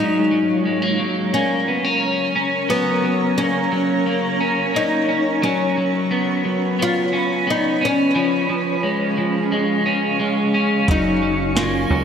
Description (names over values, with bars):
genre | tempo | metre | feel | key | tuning
dream pop | 88 BPM | 4/4 | straight | F# major | A4 = 440 Hz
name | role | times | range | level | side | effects
oud | melody | 0.0-12.0 s | B3 to E#4 | -22 LUFS | left 2 dB | digital delay
granular cloud pad | sustained chords | 0.0-12.0 s | C#4 to C#6 | -24 LUFS | right 2 dB | built-in reverb, wide subtle chorus
electric guitar at the edge of break-up | arpeggios | 0.0-12.0 s | E#3 to C#4 | -20 LUFS | left 1 dB | analog chorus, digital delay
plucky analog bass | bass | 10.9-12.0 s | F#1 to C#2 | -24 LUFS | right 1 dB | none
soft vintage rhythm box | drums | 10.9-12.0 s | hi-hat, kick drum, snare drum | -21 LUFS | right 1 dB | overdrive, gated reverb
shimmering bell with halo | texture | 11.6-12.0 s | G#5 | -32 LUFS | right 3 dB | ensemble chorus, digital delay
room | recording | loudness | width
wet lush hall reverb, RT60 2.8 s | bright 1980s-style digital production | -17 LUFS | side -7 dB against mid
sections
0.0-12.0 A section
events
none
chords
0.0 F#; 5.4 Bsus2; 8.2 C#; 10.9 F#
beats
0.65 1.33 2.02 | 2.70 3.38 4.06 4.74 | 5.42 6.11 6.79 7.47 | 8.15 8.83 9.52 10.20 | 10.88 11.56